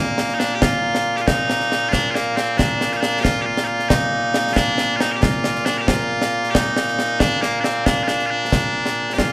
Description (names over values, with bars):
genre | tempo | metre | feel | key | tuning
scottish traditional, Scottish pipe music | 91 BPM (dotted quarters) | 6/8 | straight | Bb major | A4 = 439 Hz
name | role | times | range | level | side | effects
loud bright bagpipes | melody | 0.0-9.3 s | Bb2 to Bb4 | -21 LUFS | equal | none
concert snare drum and concert bass drum | drums | 0.2-9.3 s | none | -24 LUFS | equal | none
room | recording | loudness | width
wet stone room reverb, RT60 1.4 s | band playing live in one room | -19 LUFS | mono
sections
0.6-9.3 A section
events
none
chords
none